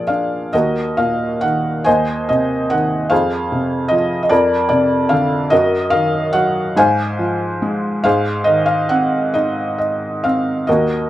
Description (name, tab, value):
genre	classical, lyrical solo piano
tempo	44-50 BPM (dotted quarters)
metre	6/8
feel	rubato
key	Eb dorian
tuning	A4 = 440 Hz
part	felt-muted upright piano	solo	0.0-11.1 s	Eb2 to Ab5	-14 LUFS	equal	none
room	light reverb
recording	minimal, uncompressed stereo recording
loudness	-14 LUFS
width	side -14 dB against mid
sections	0.5-11.1 A section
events	none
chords	0.0 Bb7; 0.5 Ebm; 1.9 Ebm6; 3.1 Fm; 4.3 Bbadd9/F; 5.5 Ebm/Gb; 6.8 Fm/Ab; 8.0 Ab